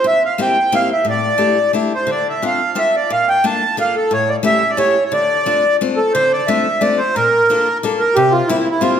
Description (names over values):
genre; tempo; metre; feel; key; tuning
musette; 178 BPM; 3/4; straight; D minor; A4 = 440 Hz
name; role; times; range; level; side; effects
accordion; melody; 0.0-9.0 s; E4 to A5; -14 LUFS; right 1 dB; none
picked steel-string acoustic guitar; accompaniment; 0.0-9.0 s; A2 to A4; -20 LUFS; left 5 dB; none
room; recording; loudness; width
wet recital hall reverb, RT60 1.7 s; none; -13 LUFS; side -8 dB against mid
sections
0.0-6.1 A section; 6.1-9.0 A section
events
none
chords
0.0 C7; 1.1 A7sus4; 2.1 Dm7; 3.1 Bbmaj7; 4.1 A7; 5.1 Dm7; 7.2 Bbmaj7; 8.2 C7